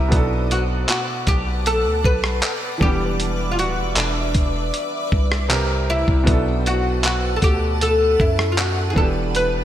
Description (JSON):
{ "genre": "contemporary R&B", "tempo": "78 BPM", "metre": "4/4", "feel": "straight", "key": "B minor", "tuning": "A4 = 440 Hz", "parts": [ { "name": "oud", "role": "melody", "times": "0.0-9.6 s", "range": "D4 to B4", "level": "-22 LUFS", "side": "left 1 dB", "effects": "none" }, { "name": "warm concert grand piano", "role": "accompaniment", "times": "0.0-9.6 s", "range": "B2 to Bb4", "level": "-26 LUFS", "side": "right 2 dB", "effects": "none" }, { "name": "granular cloud pad", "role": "sustained chords", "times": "0.0-9.6 s", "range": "B4 to Eb6", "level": "-29 LUFS", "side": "equal", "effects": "built-in reverb, lush chorus" }, { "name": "long sustained 808-style bass", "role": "bass", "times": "0.0-9.6 s", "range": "D1 to F#2", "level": "-23 LUFS", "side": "equal", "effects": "none" }, { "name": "dusty soul sampler-style drum kit", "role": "drums", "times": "0.1-9.5 s", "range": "handclaps, hi-hat, kick drum, rim click", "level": "-21 LUFS", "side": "equal", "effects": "gated reverb" }, { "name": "soft round pluck", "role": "texture", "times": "2.8-9.6 s", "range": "G3 to D5", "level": "-38 LUFS", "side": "left 2 dB", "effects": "none" } ], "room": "light reverb", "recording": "bright 1980s-style digital production", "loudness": "-17 LUFS", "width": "side -11 dB against mid", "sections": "0.0-9.6 A section", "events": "none", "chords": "0.1 Bm7; 2.8 Em7; 5.5 C5; 6.3 Bm7; 9.0 Em7", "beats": "| 0.12 0.89 1.66 2.43 | 3.19 3.96 4.73 5.50 | 6.27 7.04 7.81 8.58 | 9.35" }